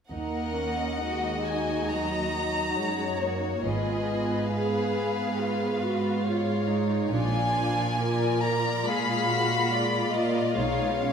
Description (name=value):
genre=classical, slow romantic movement for string orchestra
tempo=69 BPM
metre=4/4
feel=rubato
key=Eb minor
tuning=A4 = 440 Hz
part: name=warm chamber violin section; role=melody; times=0.1-11.1 s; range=Db5 to Cb6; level=-30 LUFS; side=left 2 dB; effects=none
part: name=rich chamber violin section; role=second line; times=0.1-11.1 s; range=F4 to F5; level=-31 LUFS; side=left 4 dB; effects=none
part: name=dark studio viola section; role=accompaniment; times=0.1-11.1 s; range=F3 to Ab4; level=-30 LUFS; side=right 1 dB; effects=none
part: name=rich symphonic cello section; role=bass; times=0.1-11.1 s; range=Eb2 to B2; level=-31 LUFS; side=right 3 dB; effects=none
part: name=warm chamber double bass section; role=bass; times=0.1-11.1 s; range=Ab1 to Eb2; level=-35 LUFS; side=right 3 dB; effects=none
room=wet scoring stage reverb, RT60 1.6 s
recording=none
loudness=-24 LUFS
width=side -7 dB against mid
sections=0.1-11.1 A section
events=none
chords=0.1 Ebm; 3.6 Fdim/Ab; 7.1 Bb7b9; 10.6 B